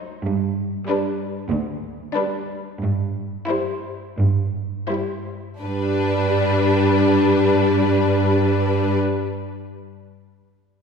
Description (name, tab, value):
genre	cinematic, playful, whimsical film cue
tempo	80-97 BPM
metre	4/4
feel	straight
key	G major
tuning	A4 = 440 Hz
part	warm studio violin section	melody	0.0-9.0 s	B4 to C5	-27 LUFS	left 2 dB	none
part	warm studio violin section	second line	0.0-9.0 s	D4 to E4	-23 LUFS	left 2 dB	none
part	dark studio viola section	accompaniment	0.0-9.0 s	F#3 to G3	-24 LUFS	left 1 dB	none
part	rich studio cello section	bass	0.3-9.0 s	D2 to G2	-23 LUFS	right 3 dB	none
room	wet concert hall reverb, RT60 2.1 s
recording	heard from further back in the room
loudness	-18 LUFS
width	side -6 dB against mid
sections	0.0-5.6 A section; 5.6-8.6 B section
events	slowing down 0.0-5.6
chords	0.3 G; 2.8 C/G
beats	| 0.26 0.89 1.52 2.16 | 2.82 3.49 4.17 4.88 | 5.62 6.36 7.09 7.83